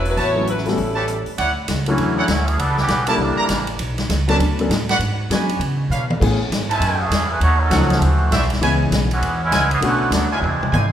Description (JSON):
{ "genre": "jazz, big band swing", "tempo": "199 BPM", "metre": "4/4", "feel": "swing 62% on 8ths", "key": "unclear", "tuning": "A4 = 440 Hz", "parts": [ { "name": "warm saxophone section", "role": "melody", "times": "0.0-1.3 s", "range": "F#3 to C#5", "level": "-22 LUFS", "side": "equal", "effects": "none" }, { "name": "upright bass", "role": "bass", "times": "0.0-10.9 s", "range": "E1 to C#3", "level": "-21 LUFS", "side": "equal", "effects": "none" }, { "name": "swinging big-band drum kit", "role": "drums", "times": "0.1-10.8 s", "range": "crash cymbal, hi-hat, kick drum, ride cymbal, rim click, snare drum, toms", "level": "-24 LUFS", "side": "equal", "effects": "none" }, { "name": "warm trumpet section", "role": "stabs", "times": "0.2-10.9 s", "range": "D4 to Bb5", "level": "-24 LUFS", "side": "right 2 dB", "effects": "none" }, { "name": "warm grand piano", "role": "accompaniment", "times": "0.3-10.3 s", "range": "D3 to A4", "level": "-23 LUFS", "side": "left 3 dB", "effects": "none" }, { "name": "muted trombone section", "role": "second line", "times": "1.9-3.7, 6.7-10.9 s", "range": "D3 to C#5", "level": "-21 LUFS", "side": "right 1 dB", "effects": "none" } ], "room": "wet recital hall reverb, RT60 1.6 s", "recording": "recorded in a church or concert hall", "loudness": "-16 LUFS", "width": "side -10 dB against mid", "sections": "0.0-1.4 A section; 1.4-10.9 B section", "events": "trombone section solo 1.4-10.9; drum fill 5.9-6.2, 10.4-10.9", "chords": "0.0 A69; 0.8 A9; 1.4 Dmaj9; 2.6 C#m7b5; 3.2 C13; 3.8 Bm9; 5.0 G#m7b5; 5.6 C#7b9; 6.2 F#m11; 7.4 D#m7b5; 8.0 D9; 8.6 C#m7; 9.8 Bm7", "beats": "| 0.18 0.48 0.78 1.08 | 1.39 1.69 1.99 2.29 | 2.59 2.90 3.20 3.50 | 3.80 4.10 4.40 4.70 | 5.00 5.31 5.61 5.91 | 6.21 6.51 6.81 7.12 | 7.42 7.72 8.02 8.32 | 8.62 8.92 9.23 9.53 | 9.83 10.13 10.43 10.73" }